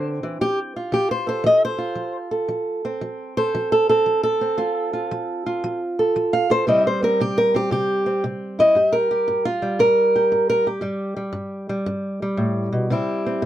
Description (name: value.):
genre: acoustic country blues, solo or duo.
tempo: 115 BPM.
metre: 4/4.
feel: swing 67% on 8ths.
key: unclear.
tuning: A4 = 440 Hz.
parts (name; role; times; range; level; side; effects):
fingerpicked old ladder-braced acoustic guitar; solo; 0.0-13.5 s; G2 to F5; -19 LUFS; right 1 dB; none.
room: light reverb.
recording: dry, close 1970s-style studio recording.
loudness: -18 LUFS.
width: side -12 dB against mid.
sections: 0.0-13.5 A section.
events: steel-string acoustic guitar solo 0.0-13.5.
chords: 0.4 F; 6.7 C; 8.7 N.C.; 12.9 C.